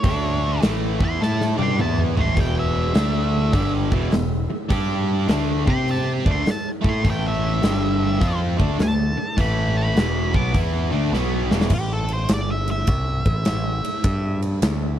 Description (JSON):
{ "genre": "blues rock power trio and southern rock", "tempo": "103 BPM", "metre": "4/4", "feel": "swing 66% on 8ths", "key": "unclear", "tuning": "A4 = 437 Hz", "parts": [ { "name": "octave-fuzz lead guitar", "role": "melody", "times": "0.0-14.4 s", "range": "G4 to D6", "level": "-29 LUFS", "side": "equal", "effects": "distortion" }, { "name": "distorted electric guitar", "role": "riff", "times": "0.0-11.7 s", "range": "E2 to C5", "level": "-24 LUFS", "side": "equal", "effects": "overdrive" }, { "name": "growling picked electric bass", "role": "bass", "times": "0.0-15.0 s", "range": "E1 to C3", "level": "-23 LUFS", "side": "equal", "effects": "overdrive" }, { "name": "huge arena drum kit", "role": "drums", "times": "0.0-14.8 s", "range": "crash cymbal, hi-hat, kick drum, ride cymbal, snare drum, toms", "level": "-23 LUFS", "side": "equal", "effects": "none" } ], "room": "little or no reverb", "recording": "none", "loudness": "-18 LUFS", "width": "side -10 dB against mid", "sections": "0.0-11.7 A section; 11.7-15.0 B section", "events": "drum fill 1.2-2.4, 11.1-11.7; lead electric guitar solo 11.7-15.0", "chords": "0.0 D5; 0.6 A5; 2.4 E5; 3.0 D5; 3.5 E5; 4.7 G5; 5.3 D5; 5.6 C5; 6.2 D5; 7.0 A5; 7.6 G5; 8.2 D5; 9.4 A5; 10.0 E5; 11.7 Am7; 12.3 Em7/G; 12.9 A5; 14.0 Em/G", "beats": "| 0.04 0.63 1.21 1.79 | 2.38 2.96 3.55 4.13 | 4.71 5.30 5.88 6.47 | 7.05 7.63 8.22 8.80 | 9.38 9.96 10.55 11.13 | 11.71 12.30 12.88 13.46 | 14.04 14.63" }